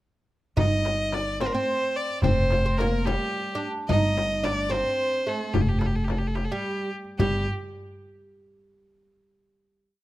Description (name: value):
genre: Arabic maqam ensemble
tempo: 72 BPM (dotted quarters)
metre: 6/8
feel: straight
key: G maqam bayati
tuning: A4 = 442 Hz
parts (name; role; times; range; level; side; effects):
- rich violin; melody; 0.6-7.5 s; G4 to Eb5; -27 LUFS; equal; none
- oud; second line; 0.6-7.5 s; G3 to Eb4; -31 LUFS; right 2 dB; none
- upright bass; bass; 0.6-7.5 s; F1 to G1; -27 LUFS; equal; none
- darbuka; percussion; 0.6-7.5 s; none; -29 LUFS; right 1 dB; none
- frame drum; percussion; 0.6-7.5 s; none; -32 LUFS; left 6 dB; none
room: light reverb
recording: close, detailed microphones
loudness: -23 LUFS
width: side -16 dB against mid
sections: 0.6-7.2 A section; 7.2-8.9 final note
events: none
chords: none